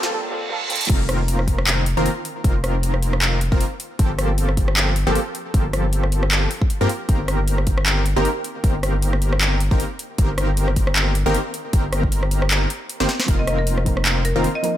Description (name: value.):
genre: future bass.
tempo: 155 BPM.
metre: 4/4.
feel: swing 56% on 16ths, half-time.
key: C dorian.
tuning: A4 = 440 Hz.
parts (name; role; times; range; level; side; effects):
soft round pluck; accompaniment; 0.0-0.9, 13.3-14.8 s; F3 to Bb4; -30 LUFS; right 3 dB; chorus, sidechain pumping, tape echo.
supersaw stab; riff; 0.0-14.5 s; Eb3 to C5; -24 LUFS; equal; sidechain pumping, tape echo.
saturated sub bass; bass; 0.0-14.5 s; F1 to G2; -21 LUFS; equal; tube saturation, sidechain pumping, high-pass filter.
trap drum kit; drums; 0.0-14.7 s; crash cymbal, handclaps, hi-hat, rim click, snare drum; -24 LUFS; equal; overdrive.
riser and reverse cymbal; sound effects; 0.1-0.9 s; none; -26 LUFS; right 4 dB; none.
electronic kick drum; drums; 0.9-13.9 s; none; -20 LUFS; equal; none.
marimba with hard mallets; melody; 13.4-14.7 s; Bb4 to Eb5; -26 LUFS; left 1 dB; sidechain pumping, ping-pong delay.
room: digital ambience.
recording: high-pass filter.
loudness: -18 LUFS.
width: side -12 dB against mid.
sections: 0.9-14.8 A section.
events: break 0.1-0.9; reverse cymbal 0.1-0.9; drum fill 0.7, 13.0; drop 0.9-14.8; kick drops out 12.5-13.3.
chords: 0.0 Gm11; 0.9 F7sus4; 4.0 Gm11; 7.1 Cm7/G; 13.3 F7sus4.